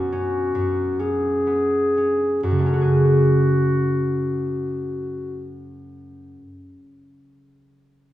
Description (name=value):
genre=classical, impressionist duo for clarinet and harp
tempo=45 BPM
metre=4/4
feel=rubato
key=F# minor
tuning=A4 = 440 Hz
part: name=warm clarinet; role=melody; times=0.0-5.5 s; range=F#4 to G#4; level=-22 LUFS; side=left 2 dB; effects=none
part: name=concert harp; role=accompaniment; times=0.0-6.4 s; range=B1 to G#4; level=-22 LUFS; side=right 1 dB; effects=none
room=wet recital hall reverb, RT60 1.2 s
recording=heard from further back in the room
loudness=-18 LUFS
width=side -14 dB against mid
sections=0.0-2.4 A section; 2.4-7.8 B section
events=slowing down 0.0-2.4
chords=0.0 Bsus2; 2.4 F#madd9